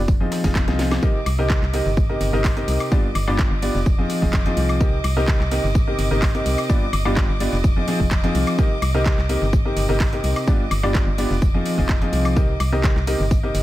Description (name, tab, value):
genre	piano house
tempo	127 BPM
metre	4/4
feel	straight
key	C minor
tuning	A4 = 441 Hz
part	organ-like FM bass	bass	0.0-13.6 s	F1 to C2	-22 LUFS	equal	sidechain pumping
part	breakbeat sampler-style drum kit	drums	0.1-13.6 s	hi-hat, snare drum, tambourine	-38 LUFS	left 2 dB	sidechain pumping on perc, high-pass filter on perc, high-pass filter on snare, sidechain pumping on hats, high-pass filter on hats
part	electronic kick drum	drums	0.1-13.4 s	none	-19 LUFS	equal	none
part	clear grand piano	riff	0.2-13.6 s	G2 to Eb5	-23 LUFS	equal	sidechain pumping, tape echo
part	house drum kit	drums	0.3-13.6 s	handclaps, hi-hat, snare drum, woodblock	-29 LUFS	equal	none
part	warm studio violin section	sustained chords	1.0-13.6 s	Eb5 to D6	-32 LUFS	right 1 dB	sidechain pumping
room	little or no reverb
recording	none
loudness	-17 LUFS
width	side -15 dB against mid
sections	0.0-13.6 A section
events	drum fill 0.6-1.0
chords	0.1 Fm7; 1.0 Cm7; 2.9 G7; 3.9 Fm7; 4.8 Cm7; 6.7 G7; 7.6 Fm7; 8.6 Cm7; 10.5 G7; 11.4 Fm7; 12.4 Cm7